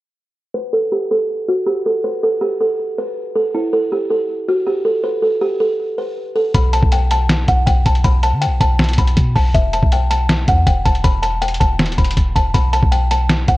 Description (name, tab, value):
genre	hip hop, trap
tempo	160 BPM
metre	4/4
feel	half-time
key	unclear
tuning	A4 = 440 Hz
part	buzzing kalimba	melody	0.5-13.6 s	E4 to B5	-18 LUFS	equal	low-pass filter
part	clean 808-style bass	bass	6.5-13.6 s	D1 to D3	-17 LUFS	equal	none
part	lo-fi sampler-style drum kit	drums	6.5-13.6 s	hi-hat, kick drum, snare drum	-16 LUFS	equal	overdrive
room	light reverb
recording	worn, warbling old tape, cassette tape, warbly pitch drift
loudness	-14 LUFS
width	side -18 dB against mid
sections	0.5-6.5 A section; 6.5-13.6 B section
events	filter sweep on kalimba 0.5-6.5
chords	0.5 N.C.; 6.5 B7(no3); 9.5 E5; 12.5 B7(no3)